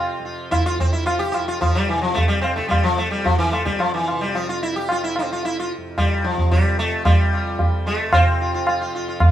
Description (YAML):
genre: indian classical, Hindustani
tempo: 110 BPM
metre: 4/4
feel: straight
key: F raga hamsadhwani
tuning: A4 = 440 Hz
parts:
  - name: sitar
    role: melody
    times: 0.0-9.3 s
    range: E3 to G4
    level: -22 LUFS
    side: left 1 dB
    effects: none
  - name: tanpura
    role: drone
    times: 0.0-9.3 s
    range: F2 to F3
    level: -31 LUFS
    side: left 1 dB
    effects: none
  - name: tabla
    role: percussion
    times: 0.5-9.3 s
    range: none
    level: -19 LUFS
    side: right 1 dB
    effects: none
room: small room ambience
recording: rough home demo mix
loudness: -18 LUFS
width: side -12 dB against mid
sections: 0.0-8.1 A section; 8.1-9.3 B section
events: speeding up 0.0-9.3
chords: none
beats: 0.52 1.07 | 1.62 2.17 2.71 3.26 | 3.81 4.35 4.89 5.44 | 5.98 6.52 7.06 7.60 | 8.13 8.67 9.21